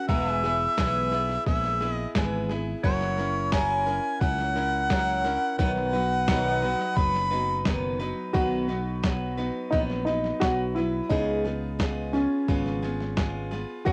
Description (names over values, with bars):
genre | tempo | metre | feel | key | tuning
honky-tonk and classic country | 87 BPM | 4/4 | straight | B major | A4 = 444 Hz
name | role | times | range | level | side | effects
warm harmonica | second line | 0.0-7.7 s | C#5 to B5 | -29 LUFS | equal | cassette tape
picked steel-string acoustic guitar | accompaniment | 0.0-13.9 s | B2 to B4 | -33 LUFS | equal | cassette tape
pedal steel guitar | sustained chords | 0.0-8.3, 13.9 s | C#5 to G#5 | -41 LUFS | equal | subtle chorus, cassette tape
fingered electric bass | bass | 0.1-13.9 s | E1 to F#2 | -34 LUFS | equal | none
lo-fi sampler-style drum kit | drums | 0.1-13.9 s | hi-hat, kick drum, snare drum | -31 LUFS | equal | overdrive
dark upright piano | melody | 8.3-13.9 s | C#4 to F#4 | -31 LUFS | equal | none
room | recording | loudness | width
light reverb | home recording on cassette | -26 LUFS | mono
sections
0.0-8.3 A section; 8.3-13.9 B section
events
harmonica solo 0.0-8.3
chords
0.1 E; 2.8 F#7; 5.6 B; 11.1 C#7